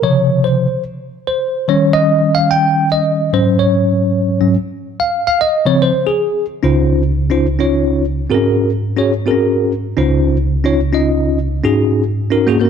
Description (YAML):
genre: gospel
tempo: 145 BPM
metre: 4/4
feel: swing 60% on 8ths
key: Db major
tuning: A4 = 439 Hz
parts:
  - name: bell-like tine electric piano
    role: accompaniment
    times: 0.0-12.7 s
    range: Db2 to G5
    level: -12 LUFS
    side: equal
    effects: fast stereo tremolo
room: moderate echo chamber reverb, RT60 1.8 s, digital ambience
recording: none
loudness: -12 LUFS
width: side -7 dB against mid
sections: 0.0-6.6 A section; 6.6-12.7 B section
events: tine electric piano solo 0.0-6.6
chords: 0.0 Dbmaj7; 1.7 Eb7; 3.3 Ab7sus4; 5.0 Dbmaj7; 6.6 Dbmaj9; 8.3 Ab9sus4; 10.0 Dbmaj9; 11.6 Ab7sus4